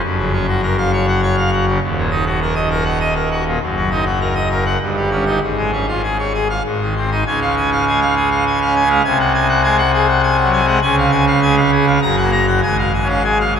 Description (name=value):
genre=classical, organ toccata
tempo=100 BPM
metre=3/4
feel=straight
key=Db major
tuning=A4 = 445 Hz
part: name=pipe organ, full organ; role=solo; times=0.0-13.6 s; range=Eb1 to Bb5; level=-14 LUFS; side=equal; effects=none
room=wet cathedral reverb, RT60 5.0 s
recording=minimal, uncompressed stereo recording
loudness=-14 LUFS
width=side -7 dB against mid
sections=0.0-7.3 A section; 7.3-13.6 B section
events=none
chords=0.0 Gbmaj7; 1.8 Ebm; 3.6 Ebm/Gb; 4.8 Eb7/G; 5.4 Db/Ab; 6.6 Ab; 7.3 Db; 9.0 Ab7/C; 10.8 Db; 12.0 Gb; 12.6 Db/Ab